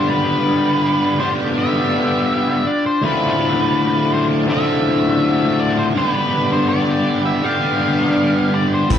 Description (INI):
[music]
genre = psychedelic rock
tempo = 82 BPM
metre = 4/4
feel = straight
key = unclear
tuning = A4 = 441 Hz
[part]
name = octave-fuzz lead guitar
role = melody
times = 0.0-9.0 s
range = B4 to F5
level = -22 LUFS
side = equal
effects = distortion, slapback echo
[part]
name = combo organ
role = sustained chords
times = 0.0-9.0 s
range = C4 to B5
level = -29 LUFS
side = right 7 dB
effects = none
[part]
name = overdriven electric guitar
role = riff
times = 0.0-9.0 s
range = D2 to A4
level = -16 LUFS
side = left 1 dB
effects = rotary speaker
[part]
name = fingered electric bass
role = bass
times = 8.9-9.0 s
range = A1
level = -19 LUFS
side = left 1 dB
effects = none
[part]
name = raw garage drum kit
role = drums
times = 8.9-9.0 s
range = hi-hat, kick drum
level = -16 LUFS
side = equal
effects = none
[sound]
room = light reverb, small room reverb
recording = studio ambience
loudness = -15 LUFS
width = side -9 dB against mid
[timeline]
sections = 0.0-9.0 A section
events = none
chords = 0.0 G7; 3.0 Dm7; 6.0 G7